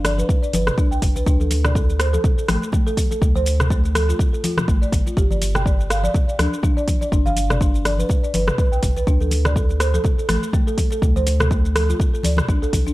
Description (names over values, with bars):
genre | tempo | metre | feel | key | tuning
afro house | 123 BPM | 4/4 | swing 56% on 16ths | D dorian | A4 = 439 Hz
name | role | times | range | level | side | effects
folk marimba with soft mallets | arpeggios | 0.0-12.9 s | A3 to G5 | -24 LUFS | right 1 dB | sidechain pumping, digital delay
warm sub bass | bass | 0.0-12.9 s | G1 to D2 | -21 LUFS | equal | sidechain pumping
deep house drum kit | drums | 0.0-12.9 s | hi-hat, rim click, shaker, toms | -25 LUFS | equal | studio reverb
congas | percussion | 0.0-12.9 s | none | -28 LUFS | left 2 dB | none
electronic kick drum | drums | 0.3-12.8 s | none | -18 LUFS | equal | studio reverb
room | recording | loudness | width
little or no reverb | dark, warm production | -16 LUFS | side -18 dB against mid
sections
0.0-12.9 A section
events
none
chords
0.0 G; 1.3 D5; 5.2 G; 9.1 D7(no3)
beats
0.29 0.78 | 1.27 1.75 2.24 2.73 | 3.22 3.71 4.19 4.68 | 5.17 5.66 6.14 6.63 | 7.12 7.61 8.10 8.58 | 9.07 9.56 10.05 10.53 | 11.02 11.51 12.00 12.48